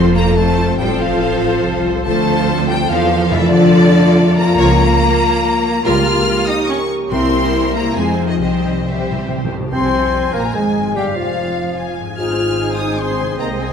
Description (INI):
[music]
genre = classical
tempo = 135-150 BPM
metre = 3/4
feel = rubato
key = F minor from 4.6 s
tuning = A4 = 440 Hz
[part]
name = warm symphonic violin section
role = melody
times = 0.0-13.7 s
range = D5 to F6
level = -21 LUFS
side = left 4 dB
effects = none
[part]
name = rich symphonic violin section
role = second line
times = 0.0-13.7 s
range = G4 to Ab5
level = -23 LUFS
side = left 2 dB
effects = none
[part]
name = rich symphonic viola section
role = accompaniment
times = 0.0-13.7 s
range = F3 to C5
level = -22 LUFS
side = right 2 dB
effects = none
[part]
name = dark French horn section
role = sustained chords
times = 0.0-13.7 s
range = F3 to A4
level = -21 LUFS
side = left 3 dB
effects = none
[part]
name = concert harp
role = arpeggios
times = 0.0-13.7 s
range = F2 to D6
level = -20 LUFS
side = left 3 dB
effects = none
[part]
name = rich symphonic double bass section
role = bass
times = 0.0-13.7 s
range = F1 to F2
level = -21 LUFS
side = right 4 dB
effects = none
[part]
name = warm symphonic cello section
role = bass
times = 0.0-13.7 s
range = F2 to F4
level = -22 LUFS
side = right 3 dB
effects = none
[part]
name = timpani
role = percussion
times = 0.0-0.1, 3.3-3.9, 7.1-10.3 s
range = F2 to C3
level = -27 LUFS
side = equal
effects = none
[part]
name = clear clarinet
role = second line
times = 9.7-13.7 s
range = F4 to C5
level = -26 LUFS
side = left 3 dB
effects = none
[part]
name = mellow hollow silver concert flute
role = second line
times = 9.7-13.7 s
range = F5 to Eb6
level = -27 LUFS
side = left 4 dB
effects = none
[part]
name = dark bassoon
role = accompaniment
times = 9.7-13.7 s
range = F3 to C4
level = -24 LUFS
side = equal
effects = none
[sound]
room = wet scoring stage reverb, RT60 1.6 s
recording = dark, warm production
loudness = -13 LUFS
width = side -7 dB against mid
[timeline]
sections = 0.0-9.7 A section; 9.7-13.7 B section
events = timpani fill 8.4-9.7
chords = 0.0 F; 0.8 F/A; 2.1 Dm7; 3.3 Dm/F; 4.6 Bbm/Db; 5.8 Gm7b5/Db; 7.1 C7; 8.0 Fm; 8.4 C; 9.7 Fm/C; 11.0 Fm; 12.2 Ab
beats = 0.36 | 0.78 1.21 1.64 | 2.06 2.48 2.89 | 3.31 3.73 4.16 | 4.58 5.00 5.42 | 5.85 6.26 6.68 | 7.10 7.53 7.97 | 8.41 8.85 9.29 | 9.73 10.14 10.55 | 10.96 11.36 11.77 | 12.18 12.58 12.98 | 13.39